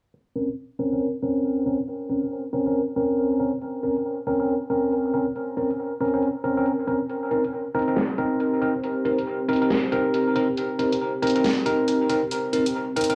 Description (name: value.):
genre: deep dubstep.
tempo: 138 BPM.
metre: 4/4.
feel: swing 61% on 16ths, half-time.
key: Bb dorian.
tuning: A4 = 441 Hz.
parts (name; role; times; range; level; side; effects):
dubstep drum kit; drums; 0.1-13.2 s; hi-hat, snare drum; -31 LUFS; equal; cassette tape.
bell-like tine electric piano; stabs; 0.4-13.2 s; C4 to Bb4; -25 LUFS; equal; low-pass filter, cassette tape, dub echo.
deep dark ambient pad; sustained chords; 8.4-13.2 s; C4 to C5; -30 LUFS; equal; chorus, built-in reverb, cassette tape.
room: wet booth ambience, RT60 0.2 s.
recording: home recording on cassette, low-pass filter, small room ambience.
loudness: -24 LUFS.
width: mono.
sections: 0.1-13.2 A section.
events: filter sweep on tine electric piano 0.1-13.2; filter sweep 0.1-13.2.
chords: 0.1 Bbmadd9; 7.1 Cm7.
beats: | 0.14 0.57 1.01 1.44 | 1.88 2.31 2.75 3.18 | 3.62 4.05 4.49 4.92 | 5.36 5.79 6.22 6.66 | 7.09 7.53 7.96 8.40 | 8.83 9.27 9.70 10.14 | 10.57 11.01 11.44 11.88 | 12.31 12.75.